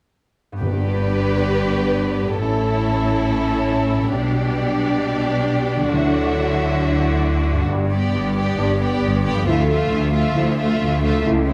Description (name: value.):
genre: cinematic, heroic adventure film score.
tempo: 135 BPM.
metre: 4/4.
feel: straight.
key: G lydian.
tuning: A4 = 440 Hz.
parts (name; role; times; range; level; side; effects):
concert harp; arpeggios; 0.5-11.5 s; G2 to E5; -30 LUFS; equal; none.
dark symphonic violin section; melody; 0.6-11.5 s; C#5 to E5; -32 LUFS; equal; none.
rich chamber violin section; second line; 0.6-11.5 s; E4 to B4; -29 LUFS; equal; none.
warm symphonic viola section; accompaniment; 0.6-11.5 s; A3 to G4; -27 LUFS; equal; none.
mellow French horn section; sustained chords; 0.6-11.4 s; F3 to E4; -27 LUFS; equal; none.
rich symphonic cello section; bass; 0.6-11.5 s; C#2 to D3; -26 LUFS; equal; none.
warm symphonic double bass section; bass; 0.6-11.5 s; G1 to D2; -26 LUFS; equal; none.
timpani; percussion; 0.6-1.2, 5.9-6.6 s; G2 to D3; -31 LUFS; equal; none.
room: moderate scoring stage reverb, RT60 1.7 s.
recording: none.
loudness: -19 LUFS.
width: mono.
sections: 0.6-11.5 A section.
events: build-up 0.6-11.5.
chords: 0.6 G; 2.4 A; 4.2 G/B; 5.9 Dadd9; 7.7 G; 9.5 Dmadd9.